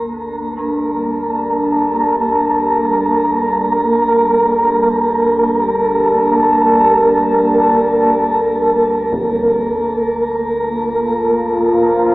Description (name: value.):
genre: dark ambient drone.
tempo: free time.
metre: none.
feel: none.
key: G minor.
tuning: A4 = 439 Hz.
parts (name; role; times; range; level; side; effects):
deep dark ambient pad; sustained chords; 0.0-12.1 s; G3 to A5; -17 LUFS; equal; chorus, built-in reverb, shimmer reverb.
dark detuned synth bell; arpeggios; 0.0-9.2 s; D4 to G4; -38 LUFS; equal; chorus, diffuse ambient delay, shimmer reverb.
deep rumbling drone; drone; 0.0-12.1 s; G1 to D2; -39 LUFS; equal; built-in reverb, analog chorus.
wind-like tuned noise texture; texture; 0.0-12.1 s; Bb3; -15 LUFS; right 1 dB; built-in reverb, shimmer reverb.
concert bass drum; percussion; 9.1-9.3 s; none; -28 LUFS; equal; low-pass filter on kick.
room: wet lush hall reverb, RT60 2.5 s.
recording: dreamy mix soaked in reverb, AM radio sound.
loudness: -12 LUFS.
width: side -21 dB against mid.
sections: 0.0-12.1 A section.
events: fade-in on ambient pad 0.0-12.1; fade-in on synth bell 0.0-12.1.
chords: 0.0 Gm7.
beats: free time.